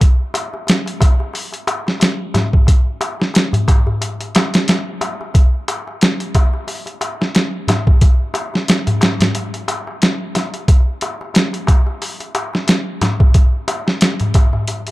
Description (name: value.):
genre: trip hop.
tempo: 90 BPM.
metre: 4/4.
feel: swing 56% on 16ths.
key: none.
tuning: none.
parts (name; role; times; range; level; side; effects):
boom bap sampler-style drum kit; drums; 0.0-14.9 s; hi-hat, kick drum, snare drum; -13 LUFS; equal; small room ambience.
darbuka; percussion; 0.0-14.9 s; none; -22 LUFS; left 1 dB; none.
room: light reverb.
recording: dark, warm production.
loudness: -14 LUFS.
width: side -18 dB against mid.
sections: 0.0-14.9 A section.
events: none.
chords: none.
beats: | 0.02 0.68 1.35 2.02 | 2.68 3.35 4.02 4.68 | 5.35 6.02 6.68 7.35 | 8.02 8.68 9.35 10.02 | 10.68 11.35 12.02 12.68 | 13.35 14.02 14.68.